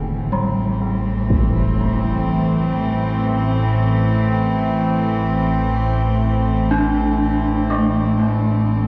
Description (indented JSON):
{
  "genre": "dark ambient drone",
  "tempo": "free time",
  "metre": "none",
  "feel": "none",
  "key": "unclear",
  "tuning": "A4 = 438 Hz",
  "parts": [
    { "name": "warm chamber cello section", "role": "sustained chords", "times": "0.0-8.9 s", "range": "A2 to C4", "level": "-24 LUFS", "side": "equal", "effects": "shimmer reverb" },
    { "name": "gamelan-type bronze metallophone", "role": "arpeggios", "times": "0.0-8.9 s", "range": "D3 to D4", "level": "-25 LUFS", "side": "equal", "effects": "tape echo" },
    { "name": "analog drone", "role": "drone", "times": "0.0-8.9 s", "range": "A1 to A2", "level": "-22 LUFS", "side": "equal", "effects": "chorus" },
    { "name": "impact", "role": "percussion", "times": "1.3-1.5 s", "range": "none", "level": "-27 LUFS", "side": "equal", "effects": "low-pass filter on sfx" }
  ],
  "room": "wet cathedral reverb, RT60 5.8 s",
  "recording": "worn, warbling old tape, cassette tape, warbly pitch drift",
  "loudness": "-19 LUFS",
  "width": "mono",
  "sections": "0.0-8.9 A section",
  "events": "none",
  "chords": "0.0 Am",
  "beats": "free time"
}